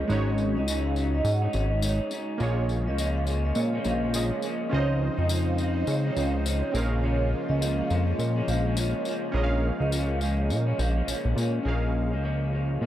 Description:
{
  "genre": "indie pop, bedroom pop",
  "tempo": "104 BPM",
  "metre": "4/4",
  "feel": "swing 60% on 16ths",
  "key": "Bb minor",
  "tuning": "A4 = 441 Hz",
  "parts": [
    { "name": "electric guitar through a small old amp", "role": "accompaniment", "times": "0.0-12.9 s", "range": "Ab2 to Eb4", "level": "-32 LUFS", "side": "left 3 dB", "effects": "lush chorus, vibrato effect" },
    { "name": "warm analog keys", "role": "accompaniment", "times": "0.0-12.9 s", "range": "Ab3 to F5", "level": "-34 LUFS", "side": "right 3 dB", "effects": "chorus, cassette tape" },
    { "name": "fat analog bass", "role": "bass", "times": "0.0-12.9 s", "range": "Ab1 to Db3", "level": "-26 LUFS", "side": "equal", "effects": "none" },
    { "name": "vibraphone with medium mallets", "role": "second line", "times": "0.1-11.5 s", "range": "Db5 to Gb5", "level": "-34 LUFS", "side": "right 5 dB", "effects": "ensemble chorus, slapback echo" },
    { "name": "tambourine", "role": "percussion", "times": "0.1-11.5 s", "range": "none", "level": "-37 LUFS", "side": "left 5 dB", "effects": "none" },
    { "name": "phased analog pad", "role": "sustained chords", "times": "2.4-11.6 s", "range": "Db3 to C5", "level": "-36 LUFS", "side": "equal", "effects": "phaser, chorus" }
  ],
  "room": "light reverb, small room reverb",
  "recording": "dark, warm production",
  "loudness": "-24 LUFS",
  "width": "side -12 dB against mid",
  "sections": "0.0-11.7 A section; 11.7-12.9 B section",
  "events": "none",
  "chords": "0.1 Ab7sus4; 2.4 Bbm7; 4.7 Dbmaj9; 6.7 Bbm7"
}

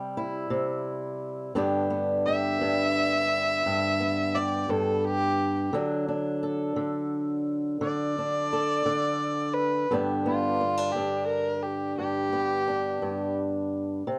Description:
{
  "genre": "acoustic country blues, solo or duo",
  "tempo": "58 BPM (dotted quarters)",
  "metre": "12/8",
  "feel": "straight",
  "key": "G major",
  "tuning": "A4 = 440 Hz",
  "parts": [
    { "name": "fingerpicked swing-style acoustic guitar", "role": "accompaniment", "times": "0.0-14.2 s", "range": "G2 to A4", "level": "-30 LUFS", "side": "equal", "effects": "none" },
    { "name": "warm fiddle", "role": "melody", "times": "2.3-13.3 s", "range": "F4 to E5", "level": "-30 LUFS", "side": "equal", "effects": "none" }
  ],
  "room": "light reverb",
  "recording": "dark, warm production",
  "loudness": "-27 LUFS",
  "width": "mono",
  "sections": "0.0-9.9 A section; 9.9-14.2 B section",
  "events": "fiddle solo 0.0-9.9",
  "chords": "0.0 C; 1.6 G; 5.7 D; 9.9 G"
}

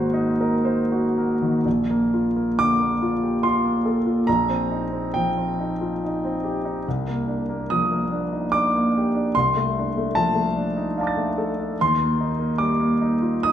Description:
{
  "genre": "classical, impressionist solo piano",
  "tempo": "58-76 BPM",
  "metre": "3/4",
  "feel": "rubato",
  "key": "Bb major",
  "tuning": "A4 = 442 Hz",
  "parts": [
    { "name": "clear grand piano", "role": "solo", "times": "0.0-13.5 s", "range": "Ab1 to A6", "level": "-20 LUFS", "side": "equal", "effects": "none" }
  ],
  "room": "moderate recital hall reverb, RT60 1.5 s",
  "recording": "minimal, uncompressed stereo recording",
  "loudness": "-20 LUFS",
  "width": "side -10 dB against mid",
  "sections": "0.0-1.7 A section; 1.7-13.5 B section",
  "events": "none",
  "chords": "0.0 Ab9; 1.7 Bbmaj7; 4.3 Eb69/Bb; 6.9 Cm11; 9.3 Dm7/C; 11.8 Ebmaj7"
}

